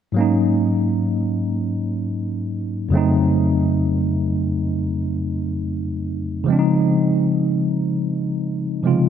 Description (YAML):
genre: R&B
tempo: free time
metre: none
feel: none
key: unclear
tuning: A4 = 440 Hz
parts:
  - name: tine electric piano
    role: accompaniment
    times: 0.1-9.1 s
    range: F2 to F4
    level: -18 LUFS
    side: equal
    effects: medium stereo tremolo
room: light reverb, digital ambience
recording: none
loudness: -18 LUFS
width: side -9 dB against mid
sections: 0.2-9.1 A section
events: none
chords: 0.2 Ab9sus4; 2.9 F7b9b13; 6.5 Dbmaj9